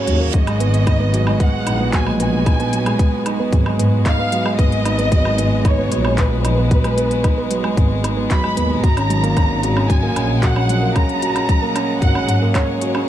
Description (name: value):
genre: piano and strings electronica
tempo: 113 BPM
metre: 4/4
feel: straight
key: unclear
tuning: A4 = 440 Hz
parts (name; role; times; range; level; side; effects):
- dark studio violin section; melody; 0.0-13.0 s; B4 to B5; -23 LUFS; equal; digital delay
- bright string quartet; sustained chords; 0.0-13.1 s; G#3 to F#5; -30 LUFS; left 3 dB; none
- felt-muted upright piano; riff; 0.0-13.1 s; F#3 to F#4; -20 LUFS; right 2 dB; digital delay
- dark symphonic double bass section; bass; 0.1-12.5 s; G#1 to G#2; -20 LUFS; equal; sidechain pumping
- organic electronic drum kit; drums; 0.1-13.1 s; handclaps, hi-hat, woodblock; -28 LUFS; equal; none
- electronic kick drum; drums; 0.3-12.7 s; none; -16 LUFS; equal; none
room: small room ambience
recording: dark, warm production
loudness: -14 LUFS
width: side -12 dB against mid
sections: 0.0-13.1 A section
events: none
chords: 0.3 G#m7; 8.8 F#/G#